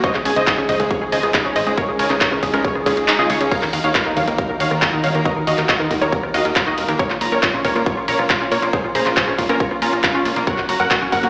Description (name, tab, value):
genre	uplifting trance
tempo	138 BPM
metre	4/4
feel	straight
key	Bb minor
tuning	A4 = 441 Hz
part	wide unison pluck	melody	0.0-11.3 s	Db4 to Gb5	-19 LUFS	equal	vintage 12-bit sampler grit, sidechain pumping, digital delay
part	lush unison pad	sustained chords	0.0-11.3 s	Eb3 to Bb4	-27 LUFS	equal	none
part	analog pluck	arpeggios	0.0-11.3 s	Ab3 to Bb5	-24 LUFS	equal	chorus, sidechain pumping, digital delay
part	electronic kick drum	drums	0.0-11.2 s	none	-23 LUFS	equal	none
part	punchy analog drum machine	drums	0.0-11.3 s	crash cymbal, handclaps, hi-hat, ride cymbal, rim click	-21 LUFS	equal	none
part	plucky analog bass	bass	0.1-11.3 s	Eb1 to Bb2	-24 LUFS	equal	sidechain pumping
room	moderate digital room reverb, RT60 1.0 s, digital ambience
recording	played on a big sound system in a bare room, large studio reverb, AM radio sound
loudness	-15 LUFS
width	side -33 dB against mid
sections	0.0-11.3 A section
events	kick drops out 3.1-3.5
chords	0.0 Dbsus2; 3.5 Ebmadd9; 7.0 Bbm; 10.5 Gb